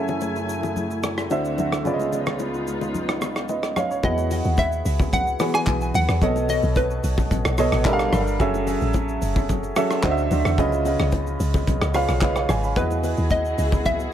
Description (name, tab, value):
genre	amapiano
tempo	110 BPM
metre	4/4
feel	straight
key	unclear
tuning	A4 = 445 Hz
part	warm baby grand piano	accompaniment	0.0-14.1 s	B2 to B5	-24 LUFS	right 1 dB	tape echo
part	muted studio string section	sustained chords	0.0-4.0, 12.8-14.1 s	C#2 to G#5	-29 LUFS	left 1 dB	sidechain pumping
part	modern studio drum kit	drums	0.1-14.1 s	handclaps, hi-hat, kick drum, rim click, shaker	-26 LUFS	equal	none
part	bongos and congas	percussion	0.1-14.0 s	none	-32 LUFS	left 5 dB	tape echo
part	hollow square pluck	melody	4.0-7.5, 12.8-14.1 s	B4 to G#5	-25 LUFS	equal	chorus, tape echo
part	deep log drum bass	bass	4.0-14.1 s	F#1 to E2	-24 LUFS	equal	none
room	light reverb, studio reverb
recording	echo-heavy mix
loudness	-20 LUFS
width	side -10 dB against mid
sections	0.0-4.0 A section; 4.0-14.1 B section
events	drop 4.0-14.1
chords	0.0 F#m9; 1.3 D9; 1.9 C#9; 4.0 Emaj9; 6.2 B7; 7.9 Gm9; 8.4 F#m9; 10.0 D9; 10.6 C#9; 12.8 Emaj9